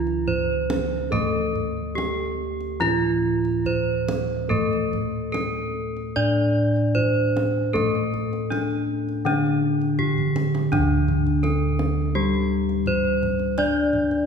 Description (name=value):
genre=Javanese gamelan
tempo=71-84 BPM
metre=4/4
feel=straight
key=D slendro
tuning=A4 = 440 Hz
part: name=gamelan-type bronze metallophone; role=melody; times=0.0-14.3 s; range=D4 to D5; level=-25 LUFS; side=right 1 dB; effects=none
part: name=gamelan-type bronze metallophone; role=accompaniment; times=0.0-14.3 s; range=D3 to D4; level=-25 LUFS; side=left 2 dB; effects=none
part: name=gamelan-type bossed gongs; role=bass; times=0.0-14.3 s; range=D2 to D5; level=-27 LUFS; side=equal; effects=none
part: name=kendang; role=percussion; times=0.1-14.2 s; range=none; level=-31 LUFS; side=right 2 dB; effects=none
room=wet scoring stage reverb, RT60 2.0 s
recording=heard from further back in the room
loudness=-20 LUFS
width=side -6 dB against mid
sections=0.0-10.7 A section; 10.7-14.3 B section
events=drum fill 10.0-10.7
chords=none